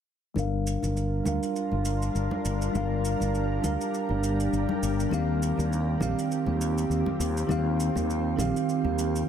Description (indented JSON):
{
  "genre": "sunset chillout",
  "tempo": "101 BPM",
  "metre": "4/4",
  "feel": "swing 56% on 16ths",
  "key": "G minor",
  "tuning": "A4 = 440 Hz",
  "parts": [
    { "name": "bell-like tine electric piano", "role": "accompaniment", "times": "0.3-9.3 s", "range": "Eb3 to F5", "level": "-29 LUFS", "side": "moving between left 6 dB and right 5 dB", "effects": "auto-pan, low-pass filter, tape echo, shimmer reverb" },
    { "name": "shimmering ambient pad", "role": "sustained chords", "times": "1.0-9.3 s", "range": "Eb3 to Bb4", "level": "-32 LUFS", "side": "right 1 dB", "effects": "chorus, built-in reverb, shimmer reverb" },
    { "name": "fretless electric bass", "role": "bass", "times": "0.4-9.2 s", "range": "G1 to Eb2", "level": "-28 LUFS", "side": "equal", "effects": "none" },
    { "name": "shaker", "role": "drums", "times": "0.4-9.3 s", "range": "none", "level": "-40 LUFS", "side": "right 2 dB", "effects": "overdrive" },
    { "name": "congas", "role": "percussion", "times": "0.4-9.0 s", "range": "none", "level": "-37 LUFS", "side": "equal", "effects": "none" }
  ],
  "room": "moderate plate reverb, RT60 1.9 s",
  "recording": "echo-heavy mix",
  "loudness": "-25 LUFS",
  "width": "side -8 dB against mid",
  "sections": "0.4-9.3 A section",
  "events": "filter sweep on tine electric piano 0.4-9.3",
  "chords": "0.4 Gm7; 5.1 Eb69"
}